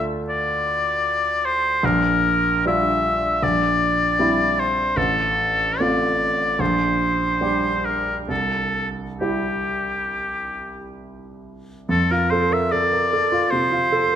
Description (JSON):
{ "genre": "classical, romantic duo for oboe and grand piano", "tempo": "65-79 BPM", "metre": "4/4", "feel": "rubato", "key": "F major", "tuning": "A4 = 441 Hz", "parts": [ { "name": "bright oboe", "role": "melody", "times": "0.0-14.2 s", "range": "G4 to E5", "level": "-20 LUFS", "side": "left 2 dB", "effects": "none" }, { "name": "clear grand piano", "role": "accompaniment", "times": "0.0-14.2 s", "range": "A1 to Bb4", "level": "-23 LUFS", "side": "right 2 dB", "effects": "none" } ], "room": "wet recital hall reverb, RT60 1.4 s", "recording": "minimal, uncompressed stereo recording", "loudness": "-18 LUFS", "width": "side -9 dB against mid", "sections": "0.0-11.9 A section; 11.9-14.2 A section", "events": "none", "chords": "0.0 Dm; 1.8 Gm7/Bb; 3.4 C7/Bb; 5.0 F/A; 6.6 Gm/Bb; 8.3 C; 11.9 F" }